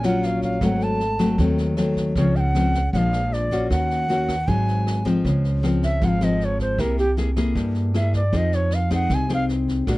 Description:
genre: bossa nova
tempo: 155 BPM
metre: 4/4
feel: straight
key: Db major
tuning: A4 = 441 Hz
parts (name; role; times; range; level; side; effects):
- bright reedy bansuri; melody; 0.0-9.4 s; G4 to A5; -25 LUFS; right 1 dB; none
- nylon-string guitar; accompaniment; 0.0-10.0 s; G2 to Ab4; -22 LUFS; left 2 dB; none
- upright bass; bass; 0.0-10.0 s; Ab1 to G2; -23 LUFS; right 1 dB; none
- jazz brush drum kit; drums; 0.0-10.0 s; kick drum, rim click, snare drum; -31 LUFS; right 1 dB; none
room: little or no reverb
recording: dry, close 1970s-style studio recording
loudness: -19 LUFS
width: side -19 dB against mid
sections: 0.0-5.2 A section; 5.2-10.0 B section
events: bansuri solo 5.2-10.0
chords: 0.0 Ebm9 (rootless); 0.6 Ab7b9; 2.2 Dbmaj7; 2.9 Bb7; 3.7 Ebm7; 4.5 Ab7; 5.2 Dbmaj7; 6.8 C7b13; 8.3 Fm7

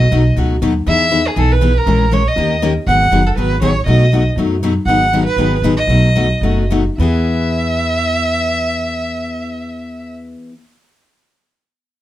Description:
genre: acoustic string swing (jazz manouche)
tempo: 204-240 BPM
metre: 4/4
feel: swing 56% on 8ths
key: E major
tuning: A4 = 440 Hz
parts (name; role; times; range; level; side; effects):
- warm violin; melody; 0.0-10.1 s; G#4 to F#5; -17 LUFS; right 2 dB; none
- picked steel-string acoustic guitar; accompaniment; 0.0-10.5 s; B2 to A#4; -18 LUFS; left 3 dB; none
- upright bass; bass; 0.0-10.3 s; F#1 to F#2; -16 LUFS; right 1 dB; none
room: moderate small room reverb, RT60 0.5 s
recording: none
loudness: -12 LUFS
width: side -13 dB against mid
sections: 0.0-2.9 A section; 2.9-7.0 B section; 7.0-9.3 C section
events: slowing down 4.9-7.0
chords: 0.0 B7; 0.9 Emaj7; 1.9 A#m7b5; 2.4 D#7; 2.9 G#m7; 3.9 B7; 4.9 G#m7; 5.9 B7; 7.0 E

